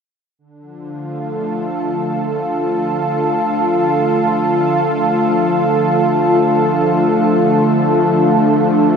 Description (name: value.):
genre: ambient.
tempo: free time.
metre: none.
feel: none.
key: D minor.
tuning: A4 = 440 Hz.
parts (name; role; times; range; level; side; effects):
lush unison pad; sustained chords; 0.9-9.0 s; D3 to A4; -13 LUFS; equal; chorus.
room: wet huge ambient reverb, RT60 8.1 s.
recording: none.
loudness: -13 LUFS.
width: side -6 dB against mid.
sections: 0.4-9.0 A section.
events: fade-in on analog synth pad 0.4-9.0.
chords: 0.4 Dm.